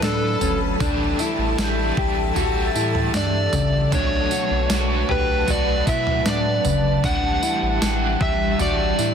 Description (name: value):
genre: dream pop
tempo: 77 BPM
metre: 4/4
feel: straight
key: unclear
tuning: A4 = 440 Hz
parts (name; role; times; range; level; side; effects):
- overdriven slide guitar; melody; 0.0-9.1 s; A4 to F#5; -25 LUFS; right 1 dB; digital delay
- raw garage guitar; accompaniment; 0.0-9.1 s; A2 to G4; -26 LUFS; right 2 dB; overdrive, tremolo, wide subtle chorus
- ethereal airy pad; sustained chords; 0.0-9.1 s; G3 to B5; -28 LUFS; left 1 dB; ensemble chorus, built-in reverb
- mellow electric guitar; arpeggios; 0.0-9.1 s; C#3 to G4; -26 LUFS; left 3 dB; wide subtle chorus, digital delay
- warm sub bass; bass; 0.0-9.1 s; G1 to B2; -25 LUFS; equal; none
- crisp 8-bit digital drum machine; drums; 0.0-9.1 s; kick drum, snare drum, tambourine, toms; -26 LUFS; right 1 dB; overdrive
- glockenspiel with rubber mallets; texture; 0.0-9.1 s; F#6 to B6; -36 LUFS; right 5 dB; none
room: light reverb, digital ambience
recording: dense, heavily limited modern master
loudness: -18 LUFS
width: side -7 dB against mid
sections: 0.0-9.1 A section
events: none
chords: 0.0 Bm7; 0.8 A7sus4; 3.9 Bm7; 7.0 A7sus4